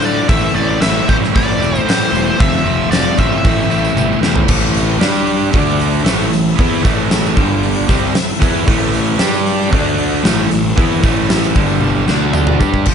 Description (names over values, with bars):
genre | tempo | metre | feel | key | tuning
classic rock | 114 BPM | 4/4 | straight | A minor | A4 = 439 Hz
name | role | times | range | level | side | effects
nasal lead guitar with a parked wah | melody | 0.0-4.2 s | C5 to E5 | -19 LUFS | left 2 dB | overdrive, slapback echo
bright tonewheel organ | sustained chords | 0.0-12.9 s | A3 to E5 | -27 LUFS | equal | none
distorted electric guitar | riff | 0.0-12.9 s | G2 to G4 | -19 LUFS | right 13 dB | overdrive
overdriven semi-hollow guitar | riff | 0.0-12.9 s | F2 to G4 | -19 LUFS | left 14 dB | none
fuzz picked electric bass | bass | 0.0-12.9 s | E1 to A2 | -20 LUFS | right 1 dB | overdrive
tambourine | percussion | 0.0-12.8 s | none | -34 LUFS | right 7 dB | none
huge arena drum kit | drums | 0.3-12.9 s | crash cymbal, hi-hat, kick drum, snare drum, toms | -16 LUFS | equal | none
room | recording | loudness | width
small room ambience | nothing above 10.8 kHz | -12 LUFS | side -7 dB against mid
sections
0.0-4.5 A section; 4.5-12.9 B section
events
drum fill 4.0-4.5, 11.8-12.9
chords
0.3 Am; 2.4 F; 3.4 Am; 5.0 G5; 5.5 D5; 6.1 Am; 7.4 G5; 7.9 Am; 9.2 G5; 9.7 D5; 10.2 Am; 12.1 D5; 12.6 G5